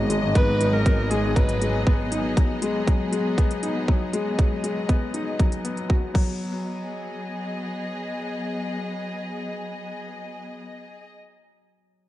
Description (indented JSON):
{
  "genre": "piano and strings electronica",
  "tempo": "119 BPM",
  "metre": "4/4",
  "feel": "straight",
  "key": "G# minor",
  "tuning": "A4 = 440 Hz",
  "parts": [
    { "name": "warm studio string section", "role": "sustained chords", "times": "0.0-11.1 s", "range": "F#3 to D#5", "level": "-30 LUFS", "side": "left 1 dB", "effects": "sidechain pumping" },
    { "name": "clear upright piano", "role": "riff", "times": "0.0-12.1 s", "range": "F#3 to F#4", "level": "-29 LUFS", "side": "left 3 dB", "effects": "tape echo" },
    { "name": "bright symphonic double bass section", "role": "bass", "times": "0.0-2.3 s", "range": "G#1", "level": "-25 LUFS", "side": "right 1 dB", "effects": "sidechain pumping" },
    { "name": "organic electronic drum kit", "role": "drums", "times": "0.1-6.2 s", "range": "crash cymbal, hi-hat", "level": "-36 LUFS", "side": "left 1 dB", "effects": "overdrive" },
    { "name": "warm viola", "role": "melody", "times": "0.4-1.9 s", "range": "G#4 to B4", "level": "-28 LUFS", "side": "equal", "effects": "tape echo" },
    { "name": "electronic kick drum", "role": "drums", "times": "0.4-6.2 s", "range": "none", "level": "-20 LUFS", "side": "equal", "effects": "overdrive" }
  ],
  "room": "light reverb, small room ambience",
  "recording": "nothing above 10.6 kHz",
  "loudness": "-22 LUFS",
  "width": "side -14 dB against mid",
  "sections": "0.0-6.4 A section; 6.4-10.4 B section",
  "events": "none",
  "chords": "0.0 G#m7; 6.1 F#sus4; 6.4 G#m7",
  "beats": "| 0.35 0.85 1.36 1.86 | 2.37 2.87 3.38 3.88 | 4.38 4.89 5.39 5.90 | 6.40 6.91 7.41 7.91 | 8.42 8.92 9.43 9.93"
}